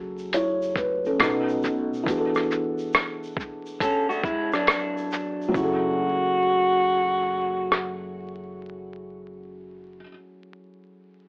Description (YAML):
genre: lo-fi hip hop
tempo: 69 BPM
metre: 4/4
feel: swing 66% on 16ths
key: F# minor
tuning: A4 = 440 Hz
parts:
  - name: felt-muted upright piano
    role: accompaniment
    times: 0.0-11.3 s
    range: B2 to C#5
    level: -27 LUFS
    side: equal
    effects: cassette tape, low-pass filter
  - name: upright bass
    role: bass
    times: 0.0-10.0 s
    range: F#1 to B1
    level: -42 LUFS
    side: equal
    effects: none
  - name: tube shaker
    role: percussion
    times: 0.2-6.0 s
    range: none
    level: -50 LUFS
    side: equal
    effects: none
  - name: lo-fi sampler-style drum kit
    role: drums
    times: 0.3-8.0 s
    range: hi-hat, kick drum, rim click, shaker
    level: -23 LUFS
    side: equal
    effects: overdrive
  - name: electric guitar through a small old amp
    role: second line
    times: 3.8-5.5 s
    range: F#3 to A4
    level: -25 LUFS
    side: equal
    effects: lush chorus, low-pass filter, analog delay
  - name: breathy tenor saxophone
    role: melody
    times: 5.6-8.1 s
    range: F#4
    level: -22 LUFS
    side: equal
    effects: low-pass filter, analog delay
room: moderate studio reverb, RT60 0.6 s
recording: vinyl crackle, AM radio sound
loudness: -21 LUFS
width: side -33 dB against mid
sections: 0.0-5.5 A section; 5.5-9.0 B section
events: none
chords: 0.0 F#m9; 1.2 B7; 2.1 E9sus4; 5.5 F#m9